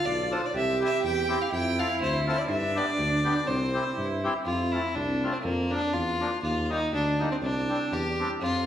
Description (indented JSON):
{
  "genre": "alpine folk, alpine dance band",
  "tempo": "122 BPM",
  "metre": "2/4",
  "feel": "swing 55% on 8ths",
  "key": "C major",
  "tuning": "A4 = 441 Hz",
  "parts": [
    { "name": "clear fiddle", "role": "melody", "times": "0.0-8.7 s", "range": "Bb3 to G5", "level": "-28 LUFS", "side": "equal", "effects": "none" },
    { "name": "dark cello", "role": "second line", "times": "0.0-4.4, 8.4-8.7 s", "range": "F3 to G4", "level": "-30 LUFS", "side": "right 3 dB", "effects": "none" },
    { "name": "mellow tuba", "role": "bass", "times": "0.1-8.7 s", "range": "B1 to G2", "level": "-30 LUFS", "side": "equal", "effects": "none" },
    { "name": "accordion", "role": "accompaniment", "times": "0.3-8.3 s", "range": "F3 to A4", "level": "-33 LUFS", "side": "left 2 dB", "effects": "none" }
  ],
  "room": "wet recital hall reverb, RT60 1.4 s",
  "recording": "heard from further back in the room",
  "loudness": "-25 LUFS",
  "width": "side -10 dB against mid",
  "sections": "0.0-4.5 A section; 4.5-8.7 B section",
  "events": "none",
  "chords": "0.0 Dm; 0.5 C; 1.5 F; 2.5 G; 3.5 C; 4.5 F; 5.4 Bb/F; 6.4 Eb; 7.4 Csus2"
}